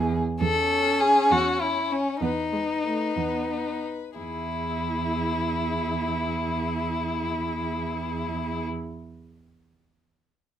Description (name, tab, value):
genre	quick classical-period movement for string quartet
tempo	57-67 BPM (dotted quarters)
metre	6/8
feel	straight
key	E major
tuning	A4 = 440 Hz
part	rich violin	second line	0.0-8.7 s	C#4 to A4	-25 LUFS	left 2 dB	none
part	warm cello	bass	0.0-8.7 s	E2	-30 LUFS	right 4 dB	none
part	dark viola	accompaniment	0.4-8.7 s	G#3 to E4	-34 LUFS	right 2 dB	none
part	rich violin	melody	0.7-8.7 s	G#4 to C#5	-39 LUFS	left 9 dB	none
room	light reverb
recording	minimal, uncompressed stereo recording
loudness	-24 LUFS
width	side -10 dB against mid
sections	0.4-4.2 A section; 4.2-8.3 B section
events	slowing down 0.0-4.2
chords	0.4 A/E; 2.2 B/E; 4.2 E